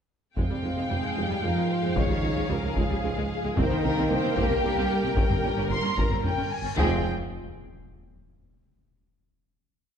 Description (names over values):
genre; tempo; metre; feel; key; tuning
cinematic, epic orchestral film score; 112 BPM; 3/4; straight; F minor; A4 = 441 Hz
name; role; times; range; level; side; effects
rich symphonic violin section; melody; 0.4-7.1 s; F5 to C6; -33 LUFS; left 2 dB; none
rich symphonic viola section; accompaniment; 0.4-7.1 s; G3 to G5; -32 LUFS; equal; none
bright trombone section; sustained chords; 0.4-7.0 s; G2 to Bb3; -35 LUFS; right 4 dB; none
dark French horn section; sustained chords; 0.4-7.0 s; C4 to Bb4; -33 LUFS; left 5 dB; none
rich symphonic cello section; bass; 0.4-7.1 s; C3 to Bb3; -33 LUFS; right 3 dB; none
rich symphonic double bass section; bass; 0.4-7.1 s; F1 to F2; -32 LUFS; right 3 dB; none
warm tuba; bass; 0.4-7.0 s; F1 to Db2; -34 LUFS; right 4 dB; none
taiko ensemble; drums; 0.4-6.9 s; none; -29 LUFS; left 1 dB; none
warm symphonic violin section; second line; 0.9-7.1 s; G4 to Db5; -34 LUFS; left 4 dB; none
reverse cymbal and impact; sound effects; 6.3-8.4 s; none; -40 LUFS; left 1 dB; none
room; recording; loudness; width
moderate scoring stage reverb, RT60 1.6 s; dark, warm production; -23 LUFS; side -8 dB against mid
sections
0.4-6.8 theme; 6.8-8.4 final chord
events
reverse cymbal 6.3-6.8; impact 6.8-8.4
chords
0.4 Fmadd9; 2.0 Db; 3.6 Cm7; 5.2 Gdim; 6.8 Fm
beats
| 0.37 0.91 1.44 | 1.98 2.51 3.04 | 3.58 4.11 4.64 | 5.17 5.71 6.24 | 6.78 7.31 7.84